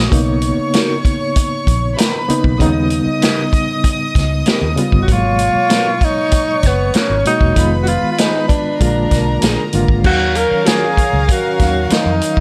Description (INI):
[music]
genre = lush 1970s-style soul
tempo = 97 BPM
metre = 4/4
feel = straight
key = Eb minor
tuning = A4 = 444 Hz
[part]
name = warm symphonic violin section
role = second line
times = 0.0-12.4 s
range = Db4 to Eb6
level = -25 LUFS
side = equal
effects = none
[part]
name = barky reed electric piano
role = accompaniment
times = 0.0-12.4 s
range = Cb3 to F5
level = -22 LUFS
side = equal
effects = overdrive, fast tremolo
[part]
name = vintage muted fingered electric bass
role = bass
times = 0.0-12.4 s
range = Fb1 to F2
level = -21 LUFS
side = equal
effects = none
[part]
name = vintage drum kit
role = drums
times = 0.1-12.4 s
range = crash cymbal, hi-hat, kick drum, snare drum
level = -18 LUFS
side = equal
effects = none
[part]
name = electric guitar through a small old amp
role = riff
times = 0.7-12.1 s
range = F3 to A#4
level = -26 LUFS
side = equal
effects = phaser
[part]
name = breathy tenor saxophone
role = melody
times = 5.0-12.4 s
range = Cb4 to Bb4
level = -19 LUFS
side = equal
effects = none
[sound]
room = light reverb, small room ambience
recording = none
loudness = -15 LUFS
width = mono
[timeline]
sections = 0.0-10.0 A section; 10.0-12.4 B section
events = none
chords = 0.1 Bmaj9; 2.6 Eb7b13; 5.1 Abm9; 7.6 Fm7b5; 8.8 Bb7; 10.0 Ebm9